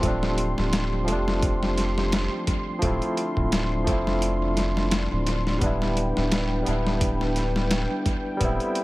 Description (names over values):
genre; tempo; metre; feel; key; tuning
trip hop; 86 BPM; 4/4; swing 56% on 16ths; unclear; A4 = 440 Hz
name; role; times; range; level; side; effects
barky tine electric piano; accompaniment; 0.0-8.8 s; F3 to E4; -27 LUFS; equal; tremolo, tape echo
dark analog pad; sustained chords; 0.0-8.8 s; D4 to C6; -31 LUFS; equal; chorus
soft dub sub bass; bass; 0.0-8.6 s; D1 to F1; -27 LUFS; equal; none
dusty soul sampler-style drum kit; drums; 0.0-8.8 s; hi-hat, kick drum, snare drum; -27 LUFS; equal; overdrive, tape echo
room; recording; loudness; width
digital ambience; echo-heavy mix; -22 LUFS; side -18 dB against mid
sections
0.0-8.8 A section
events
none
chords
0.0 G7sus4/D; 2.8 Dm7; 5.6 Em7/D